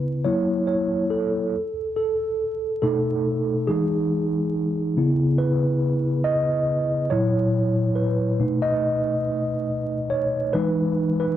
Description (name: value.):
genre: hip hop.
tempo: 70 BPM.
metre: 4/4.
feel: swing 57% on 16ths.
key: unclear.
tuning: A4 = 440 Hz.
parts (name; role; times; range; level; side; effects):
mellow tine electric piano; solo; 0.0-11.4 s; A#2 to D#5; -20 LUFS; equal; medium stereo tremolo, cassette tape, low-pass filter.
room: wet studio reverb, RT60 0.5 s.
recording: vinyl crackle.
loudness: -20 LUFS.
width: side -11 dB against mid.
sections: 0.0-10.5 A section.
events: tine electric piano solo 0.0-10.5.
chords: 0.3 F#7; 1.5 B7; 3.7 Emaj7; 5.0 C#m9; 7.1 F#7; 8.4 B7; 10.5 Emaj7.